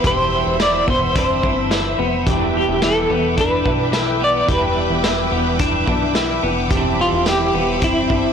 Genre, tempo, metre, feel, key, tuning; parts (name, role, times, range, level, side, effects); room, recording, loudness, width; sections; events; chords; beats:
dream pop; 108 BPM; 4/4; straight; A4 = 440 Hz
semi-hollow electric guitar; melody; 0.0-8.3 s; E4 to D5; -20 LUFS; equal; tremolo, ping-pong delay
semi-hollow electric guitar; accompaniment; 0.0-8.3 s; E2 to E4; -24 LUFS; right 4 dB; tremolo, analog chorus
string machine, violas; sustained chords; 0.0-8.3 s; B4 to E6; -24 LUFS; right 1 dB; ensemble chorus
semi-hollow electric guitar; arpeggios; 0.0-8.3 s; B3 to G4; -22 LUFS; left 5 dB; analog chorus, ping-pong delay
plucky analog bass; bass; 0.0-8.3 s; E1 to B1; -25 LUFS; equal
vintage drum kit; drums; 0.0-8.2 s; hi-hat, kick drum, snare drum, tambourine; -23 LUFS; equal
vibraphone with soft mallets; texture; 2.3-2.9, 6.7-7.3 s; B3 to C4; -31 LUFS; right 8 dB
light reverb, studio ambience; blown-out, overdriven recording, overdrive; -15 LUFS; side -7 dB against mid
0.0-8.3 A section
0.0 Cmaj9/E; 2.3 Em7; 6.7 Cmaj9/E
| 0.04 0.60 1.15 1.71 | 2.26 2.82 3.38 3.93 | 4.49 5.04 5.60 6.15 | 6.71 7.26 7.82